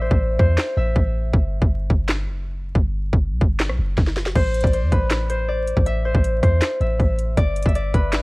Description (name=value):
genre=hip hop, trap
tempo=159 BPM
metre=4/4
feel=half-time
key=G major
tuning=A4 = 440 Hz
part: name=concert harp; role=melody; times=0.0-8.2 s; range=B4 to E5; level=-24 LUFS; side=left 1 dB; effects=tape echo
part: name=clean 808-style bass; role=bass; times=0.0-8.2 s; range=F#1 to E2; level=-21 LUFS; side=equal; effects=none
part: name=trap drum kit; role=drums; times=0.1-8.2 s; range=crash cymbal, handclaps, hi-hat, kick drum, rim click, snare drum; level=-19 LUFS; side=equal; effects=none
room=little or no reverb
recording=worn, warbling old tape, cassette tape, vinyl crackle, warbly pitch drift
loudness=-18 LUFS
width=side -24 dB against mid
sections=0.0-8.2 A section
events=break 0.0-4.4; drum fill 4.0-4.4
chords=0.0 Am; 1.3 Gmaj7(no3); 4.4 Am; 7.4 G5